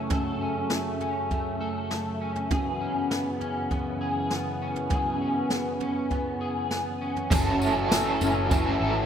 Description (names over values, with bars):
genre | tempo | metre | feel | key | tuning
dream pop | 100 BPM | 4/4 | straight | F# minor | A4 = 439 Hz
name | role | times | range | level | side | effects
warm analog pad | sustained chords | 0.0-9.1 s | F#2 to A5 | -32 LUFS | right 1 dB | chorus
electric guitar at the edge of break-up | arpeggios | 0.0-9.1 s | F#2 to A4 | -28 LUFS | left 1 dB | ensemble chorus, ping-pong delay
jazz brush drum kit | drums | 0.1-8.7 s | crash cymbal, kick drum, snare drum, tambourine, toms | -29 LUFS | equal | none
biting overdriven guitar | accompaniment | 7.3-9.1 s | F#2 to A4 | -27 LUFS | right 4 dB | tremolo, ensemble chorus
vintage muted fingered electric bass | bass | 7.3-9.1 s | F#1 to G#1 | -30 LUFS | equal | none
room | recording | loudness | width
moderate lush hall reverb, RT60 1.8 s, small room ambience | rough home demo mix | -25 LUFS | side -8 dB against mid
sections
0.0-7.3 A section; 7.3-9.1 B section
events
none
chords
0.0 F#m; 2.5 C#m7/F#; 7.3 F#m7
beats
| 0.11 0.71 1.31 1.91 | 2.51 3.11 3.71 4.31 | 4.91 5.51 6.11 6.71 | 7.31 7.91 8.51